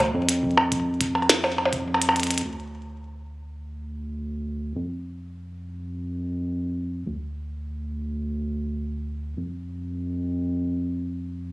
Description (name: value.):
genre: IDM.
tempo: 104 BPM.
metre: 4/4.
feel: straight.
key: D minor.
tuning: A4 = 444 Hz.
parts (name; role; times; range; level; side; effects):
round analog bass; bass; 0.0-11.5 s; D2 to F2; -28 LUFS; equal; tube saturation.
electronic kick drum; drums; 0.0-1.8 s; none; -34 LUFS; equal; none.
glitchy drum kit; drums; 0.0-2.5 s; hi-hat, percussion blips, snare drum; -22 LUFS; equal; ping-pong delay.
room: light reverb.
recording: recorded on a phone in the room, club reverb, compression.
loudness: -25 LUFS.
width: side -21 dB against mid.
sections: 0.0-2.5 A section; 2.5-11.5 B section.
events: kick drops out 1.9-2.5; drum fill 2.2.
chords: none.